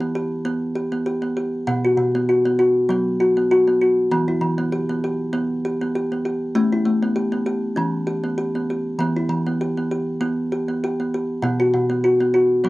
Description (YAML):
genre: world meditative, meditative tuned percussion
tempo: 98 BPM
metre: 4/4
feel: swing 54% on 16ths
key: E kumoi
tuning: A4 = 440 Hz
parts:
  - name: kalimba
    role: solo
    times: 0.0-12.7 s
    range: B2 to G4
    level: -18 LUFS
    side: equal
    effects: none
room: wet booth ambience, RT60 0.2 s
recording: none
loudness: -18 LUFS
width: side -19 dB against mid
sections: 0.0-12.7 A section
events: none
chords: 0.0 Em; 1.7 B5; 4.1 Em; 6.6 A; 9.0 Em; 11.4 B5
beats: 0.45 1.06 | 1.67 2.29 2.90 3.50 | 4.12 4.72 5.33 5.94 | 6.55 7.16 7.77 8.38 | 8.99 9.60 10.21 10.82 | 11.43 12.04 12.65